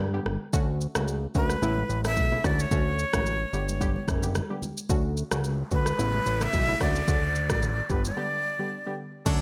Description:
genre	afrobeats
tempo	110 BPM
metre	4/4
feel	swing 55% on 16ths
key	D major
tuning	A4 = 440 Hz
part	glassy wavetable pluck	accompaniment	0.0-9.4 s	C#3 to G4	-36 LUFS	equal	chorus
part	fat analog bass	bass	0.0-9.4 s	F#1 to G2	-31 LUFS	equal	none
part	congas	percussion	0.0-8.2 s	none	-42 LUFS	equal	none
part	afro-pop drum kit	drums	0.3-9.4 s	crash cymbal, kick drum, rim click, shaker	-31 LUFS	equal	gated reverb
part	breathy bright jazz flute	melody	1.4-9.0 s	B4 to E5	-32 LUFS	equal	none
part	noise sweep	sound effects	5.5-8.2 s	none	-44 LUFS	equal	none
part	warm horn section	second line	9.3-9.4 s	F#3 to A4	-34 LUFS	equal	none
room	light reverb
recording	bright 1980s-style digital production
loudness	-27 LUFS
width	mono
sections	0.0-9.3 A section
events	break 0.0-0.5, 8.2-9.3; noise sweep 5.5-9.3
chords	0.0 G; 0.5 Dmaj7; 1.6 Aadd9; 2.4 Dmaj7; 3.5 G; 4.9 Dmaj7; 6.0 Aadd9; 6.8 Dmaj7; 7.9 G

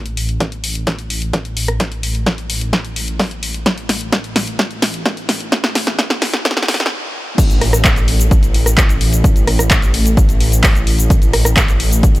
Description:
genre	EDM, festival progressive house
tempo	129 BPM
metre	4/4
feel	straight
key	unclear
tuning	A4 = 443 Hz
part	wide detuned saw bass	bass	0.0-12.2 s	A1	-18 LUFS	equal	chorus, tube saturation, sidechain pumping
part	house drum kit	drums	0.1-12.2 s	crash cymbal, handclaps, hi-hat, rim click, shaker, snare drum	-17 LUFS	equal	none
part	electronic kick drum	drums	0.4-12.1 s	none	-14 LUFS	equal	high-pass filter on kick
room	little or no reverb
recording	high-pass filter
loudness	-13 LUFS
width	side -18 dB against mid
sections	0.0-7.4 A section; 7.4-12.2 B section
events	build-up 0.0-7.4; drum fill 0.0-6.9; filter sweep 0.0-7.4; stop 6.9-7.4; drop 7.4-12.2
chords	none

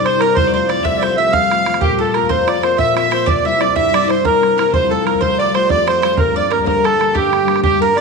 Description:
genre	celtic folk, Celtic slip jig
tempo	124 BPM (dotted quarters)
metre	9/8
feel	straight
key	G dorian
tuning	A4 = 441 Hz
part	accordion	melody	0.0-8.0 s	G4 to F5	-16 LUFS	right 3 dB	none
part	clear fiddle	second line	0.0-8.0 s	G4 to F5	-23 LUFS	left 11 dB	none
part	mandolin	second line	0.0-8.0 s	G4 to F5	-22 LUFS	right 8 dB	none
part	concert harp	accompaniment	0.0-8.0 s	C2 to F4	-20 LUFS	left 11 dB	none
part	bodhran	percussion	0.1-8.0 s	none	-22 LUFS	right 3 dB	none
room	wet echo chamber reverb, RT60 1.4 s, small room ambience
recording	1960s-style stereo with parts hard left and right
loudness	-12 LUFS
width	side -4 dB against mid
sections	0.0-7.6 A section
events	none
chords	0.4 Fadd9; 1.8 Bbsus2; 3.3 C; 4.7 Fadd9; 6.2 Gm

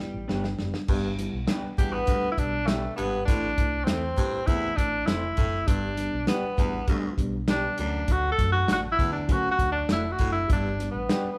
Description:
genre	uptempo 1960s-style soul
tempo	100 BPM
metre	4/4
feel	straight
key	G major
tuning	A4 = 441 Hz
part	warm tenor saxophone	melody	0.0-11.4 s	G3 to A4	-30 LUFS	equal	none
part	dark upright piano	accompaniment	0.0-11.3 s	F#3 to E4	-37 LUFS	equal	none
part	hollow-body short-scale fingered electric bass	bass	0.0-11.3 s	F1 to D3	-35 LUFS	equal	none
part	electric guitar through a small old amp	stabs	0.3-11.2 s	A3 to C5	-39 LUFS	equal	none
part	warm soul drum kit	drums	0.3-11.2 s	crash cymbal, hi-hat, kick drum, snare drum	-29 LUFS	equal	none
part	growling baritone saxophone	riff	0.9-10.7 s	D2 to A2	-37 LUFS	equal	none
room	moderate large studio reverb, RT60 1.1 s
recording	band playing live in one room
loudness	-26 LUFS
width	mono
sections	0.9-11.4 A section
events	drum fill 0.0-0.9; tenor saxophone solo 0.9-11.4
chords	0.0 G; 3.3 Am; 5.7 G; 7.8 D; 10.5 G

